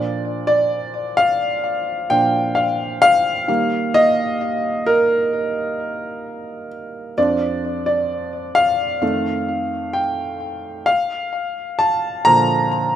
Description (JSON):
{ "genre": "pop", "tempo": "65 BPM", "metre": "4/4", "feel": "straight", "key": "Bb major", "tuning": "A4 = 440 Hz", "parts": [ { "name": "warm concert grand piano", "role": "solo", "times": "0.0-13.0 s", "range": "F2 to Bb5", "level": "-17 LUFS", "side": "equal", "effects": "ping-pong delay" } ], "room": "moderate lush hall reverb, RT60 2.3 s", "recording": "rough home demo mix", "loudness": "-17 LUFS", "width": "side -10 dB against mid", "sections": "0.0-13.0 A section", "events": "grand piano solo 0.0-13.0", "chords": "0.0 Bb; 3.5 Eb; 7.2 Dm/F; 9.0 F7; 10.9 Bb" }